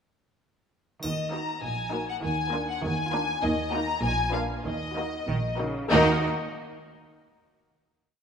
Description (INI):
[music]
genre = cinematic, playful, whimsical film cue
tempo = 98 BPM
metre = 2/4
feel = straight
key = Eb minor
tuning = A4 = 441 Hz
[part]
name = rich studio violin section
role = melody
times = 1.0-6.3 s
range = Eb5 to Bb5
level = -30 LUFS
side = left 3 dB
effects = none
[part]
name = clear studio cello section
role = bass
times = 1.0-6.3 s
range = Bb2 to Eb3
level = -32 LUFS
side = right 2 dB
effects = none
[part]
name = rich studio double bass section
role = bass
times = 1.0-6.3 s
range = Bb1 to Eb2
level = -32 LUFS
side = right 2 dB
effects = none
[part]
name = triangle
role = percussion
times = 1.0-2.2 s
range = none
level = -42 LUFS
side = equal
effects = none
[part]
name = clear studio violin section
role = second line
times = 1.3-6.3 s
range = F4 to Cb5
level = -31 LUFS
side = equal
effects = none
[part]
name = rich studio viola section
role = accompaniment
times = 1.3-6.3 s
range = Bb3 to Eb4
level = -30 LUFS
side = equal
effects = none
[sound]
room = wet scoring stage reverb, RT60 1.9 s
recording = none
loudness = -25 LUFS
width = side -7 dB against mid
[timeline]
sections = 1.0-5.9 A section; 5.9-7.2 final chord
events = none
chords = 1.0 Ebm; 2.2 Bb7/Eb; 3.4 Ebm; 4.0 Bb7b9; 4.6 Ebm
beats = | 1.03 1.63 | 2.23 2.83 | 3.43 4.03 | 4.65 5.27 | 5.91